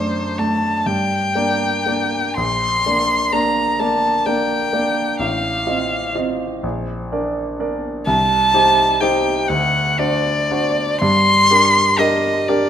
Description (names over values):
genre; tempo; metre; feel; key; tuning
classical, romantic duo for violin and grand piano; 42 BPM (dotted quarters); 6/8; rubato; G minor; A4 = 441 Hz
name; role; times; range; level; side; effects
clear violin; melody; 0.0-12.7 s; C5 to C6; -16 LUFS; equal; none
clear grand piano; accompaniment; 0.0-12.7 s; A1 to Eb5; -20 LUFS; equal; none
room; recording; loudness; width
wet recital hall reverb, RT60 1.6 s; none; -15 LUFS; side -9 dB against mid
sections
0.0-12.7 A section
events
none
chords
0.0 D7/F#; 0.9 Gm; 2.4 Bb; 5.2 F7/A; 6.6 Bb; 8.1 Cm; 9.5 D7; 11.0 Gm